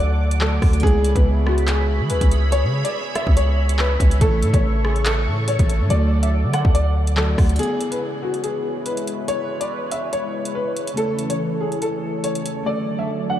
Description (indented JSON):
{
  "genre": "hip hop, drill",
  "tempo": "142 BPM",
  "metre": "4/4",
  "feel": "half-time",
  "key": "C# phrygian",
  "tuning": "A4 = 440 Hz",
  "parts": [
    { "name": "dark baby grand piano", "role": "melody", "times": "0.0-13.4 s", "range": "F#4 to F#5", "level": "-24 LUFS", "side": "left 1 dB", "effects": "none" },
    { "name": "glassy digital keys", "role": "accompaniment", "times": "0.0-13.4 s", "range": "C#3 to A4", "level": "-28 LUFS", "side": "right 1 dB", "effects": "chorus" },
    { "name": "sweeping resonant pad", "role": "sustained chords", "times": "0.0-13.4 s", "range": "E3 to D6", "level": "-29 LUFS", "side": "right 1 dB", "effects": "chorus" },
    { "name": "hard-hitting 808-style bass", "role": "bass", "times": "0.0-7.6 s", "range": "A1 to E3", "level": "-18 LUFS", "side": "equal", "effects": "none" },
    { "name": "drill drum kit", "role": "drums", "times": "0.3-12.6 s", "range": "handclaps, hi-hat, kick drum, rim click", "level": "-21 LUFS", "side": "equal", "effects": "none" }
  ],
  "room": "light reverb",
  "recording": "none",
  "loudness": "-17 LUFS",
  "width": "side -12 dB against mid",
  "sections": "0.0-7.6 A section; 7.6-13.4 B section",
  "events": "none",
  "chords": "0.0 D; 0.8 C#m7; 4.2 A; 5.9 D; 7.6 C#m7; 11.0 A; 12.7 D"
}